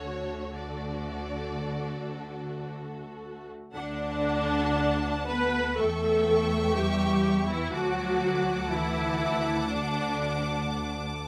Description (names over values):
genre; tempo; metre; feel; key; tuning
classical, slow romantic movement for string orchestra; 55-65 BPM; 4/4; rubato; D major; A4 = 439 Hz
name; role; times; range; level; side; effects
warm symphonic violin section; melody; 0.0-11.3 s; C#5 to D6; -40 LUFS; equal; none
warm symphonic violin section; second line; 0.0-11.3 s; F#4 to A5; -40 LUFS; equal; none
rich symphonic viola section; accompaniment; 0.0-11.1 s; A3 to B4; -32 LUFS; equal; none
rich symphonic double bass section; bass; 0.0-11.3 s; D2 to E2; -36 LUFS; equal; none
warm symphonic cello section; bass; 0.0-11.1 s; D3 to B3; -36 LUFS; equal; none
room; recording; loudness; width
light reverb; close, detailed microphones; -28 LUFS; mono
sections
0.0-3.7 A section; 3.7-11.3 B section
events
none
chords
0.0 D; 5.8 C#dim/E; 7.7 D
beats
0.56 1.63 2.68 | 3.74 4.78 5.78 6.75 | 7.74 8.71 9.67 10.62